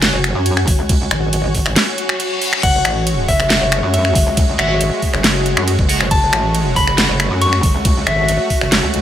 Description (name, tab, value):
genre	heavy wobble dubstep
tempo	138 BPM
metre	4/4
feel	half-time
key	F# minor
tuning	A4 = 440 Hz
part	heavy high-gain guitar	stabs	0.0-0.1, 3.5-7.1 s	F#4 to F#5	-25 LUFS	right 2 dB	distortion, tape echo
part	metallic wobble bass	bass	0.0-9.0 s	F#1 to F#2	-18 LUFS	equal	chorus, overdrive
part	dubstep drum kit	drums	0.0-9.0 s	crash cymbal, finger snaps, hi-hat, snare drum	-18 LUFS	right 1 dB	studio ambience
part	granular cloud pad	texture	0.0-9.0 s	F#4 to G#5	-24 LUFS	equal	built-in reverb, sidechain pumping
part	electronic kick drum	drums	0.7-8.6 s	none	-16 LUFS	equal	studio ambience
part	reverse cymbal	sound effects	2.0-2.6 s	none	-24 LUFS	left 5 dB	none
part	clean electric guitar	melody	2.6-9.0 s	E5 to C#6	-19 LUFS	left 2 dB	spring reverb, tape echo
part	supersaw pad	sustained chords	2.6-9.0 s	G#3 to F#4	-25 LUFS	right 2 dB	sidechain pumping
room	light reverb, digital ambience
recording	none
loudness	-13 LUFS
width	side -10 dB against mid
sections	0.0-9.0 A section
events	reverse cymbal 2.0-2.6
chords	0.0 F#madd9